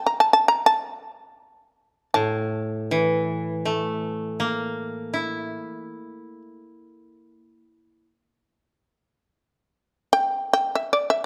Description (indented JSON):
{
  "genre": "japanese traditional, Japanese chamber music",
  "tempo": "free time",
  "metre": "none",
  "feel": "none",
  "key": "unclear",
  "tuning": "A4 = 440 Hz",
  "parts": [
    { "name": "shamisen", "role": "melody", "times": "0.0-11.2 s", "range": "D5 to Bb5", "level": "-21 LUFS", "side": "equal", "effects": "none" },
    { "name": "koto", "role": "accompaniment", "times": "2.1-8.1 s", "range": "A2 to E4", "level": "-28 LUFS", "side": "equal", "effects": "none" }
  ],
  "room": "light reverb",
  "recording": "close, detailed microphones",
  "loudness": "-24 LUFS",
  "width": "mono",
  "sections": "0.0-11.3 A section",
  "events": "slowing down 6.5-11.3",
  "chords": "none"
}